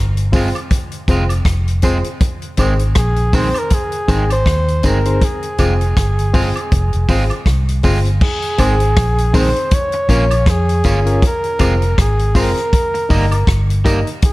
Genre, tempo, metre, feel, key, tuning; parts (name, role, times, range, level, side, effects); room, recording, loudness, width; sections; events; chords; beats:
roots reggae; 80 BPM; 4/4; swing 57% on 16ths; Ab major; A4 = 440 Hz
vintage muted fingered electric bass; bass; 0.0-14.0 s; F1 to F2; -16 LUFS; equal
vintage drum kit; drums; 0.2-14.3 s; crash cymbal, hi-hat, kick drum, rim click; -17 LUFS; equal
electric guitar at the edge of break-up; accompaniment; 0.3-14.0 s; Eb3 to F4; -24 LUFS; right 2 dB; dub echo
reed electric piano; stabs; 0.3-14.1 s; C4 to Eb5; -23 LUFS; left 2 dB; tremolo
tambourine and woodblock; percussion; 0.3-14.1 s; -31 LUFS; right 4 dB
warm flugelhorn; melody; 3.0-14.3 s; Ab4 to Db5; -20 LUFS; equal; dub echo
small room ambience; -13 LUFS; side -19 dB against mid
0.0-8.2 A section; 8.2-14.3 B section
0.0 Fm; 2.2 Ab; 5.2 Fm; 8.2 Ab; 9.7 Bbm; 11.2 Fm; 12.7 Eb
0.71 1.46 | 2.21 2.96 3.71 4.46 | 5.21 5.96 6.71 7.47 | 8.22 8.97 9.72 10.47 | 11.22 11.97 12.73 13.48 | 14.23